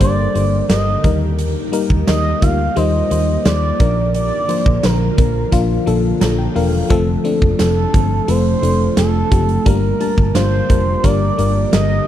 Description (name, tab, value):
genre	1980s-style pop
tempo	87 BPM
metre	4/4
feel	straight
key	unclear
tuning	A4 = 439 Hz
part	expressive synth lead	melody	0.0-12.1 s	A4 to F5	-20 LUFS	right 3 dB	chorus, slapback echo
part	FM electric piano	accompaniment	0.0-12.1 s	D3 to Bb5	-19 LUFS	left 5 dB	chorus
part	ethereal airy pad	sustained chords	0.0-12.1 s	C3 to G4	-25 LUFS	right 2 dB	ensemble chorus, built-in reverb
part	vintage muted fingered electric bass	bass	0.0-12.0 s	E1 to Eb2	-18 LUFS	right 1 dB	none
part	huge arena drum kit	drums	0.0-11.9 s	hi-hat, kick drum, snare drum	-19 LUFS	right 1 dB	none
part	tambourine	percussion	0.7-11.9 s	none	-35 LUFS	right 19 dB	none
room	small room ambience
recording	none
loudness	-13 LUFS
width	side -11 dB against mid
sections	0.0-12.1 A section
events	FM electric piano fill 5.9-6.9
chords	0.0 Gm; 1.0 Eb; 3.8 Bb; 6.9 F; 9.7 Gm